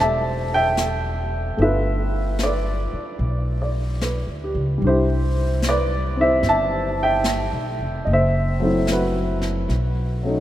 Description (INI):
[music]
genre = jazz ballad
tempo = 74 BPM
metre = 4/4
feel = swing 68% on 8ths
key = unclear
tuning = A4 = 437 Hz
[part]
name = warm upright piano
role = accompaniment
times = 0.0-10.4 s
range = F#3 to A5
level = -21 LUFS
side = equal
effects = none
[part]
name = upright bass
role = bass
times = 0.0-10.4 s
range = E1 to D2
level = -23 LUFS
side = equal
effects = none
[part]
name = jazz brush drum kit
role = drums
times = 0.8-10.4 s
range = brushed snare drum, hi-hat, snare drum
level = -32 LUFS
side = equal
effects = none
[sound]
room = moderate cathedral reverb, RT60 5.6 s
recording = in a vast, echoing space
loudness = -19 LUFS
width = side -13 dB against mid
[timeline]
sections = 0.0-10.4 A section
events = none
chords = 0.0 Am7; 1.6 G7; 4.8 Cmaj9; 8.1 F#m7b5; 9.7 B7